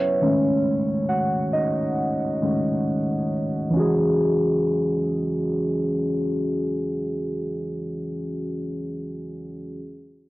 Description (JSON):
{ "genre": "R&B", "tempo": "68 BPM", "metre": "4/4", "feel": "straight", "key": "E major", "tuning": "A4 = 439 Hz", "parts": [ { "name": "muted felt-like synth keys", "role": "accompaniment", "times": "0.0-9.8 s", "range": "D#3 to F#5", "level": "-22 LUFS", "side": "equal", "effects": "chorus, cassette tape" } ], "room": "light reverb, digital ambience", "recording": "home recording on cassette, low-pass filter", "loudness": "-21 LUFS", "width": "side -18 dB against mid", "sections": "0.0-3.7 A section; 3.7-7.3 B section", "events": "synth keys solo 0.0-3.7; filter sweep 0.0-3.7", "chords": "0.2 D#m7b5; 3.7 E69", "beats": "| 0.21 1.09 1.98 2.86 | 3.74 4.62 5.50 6.39" }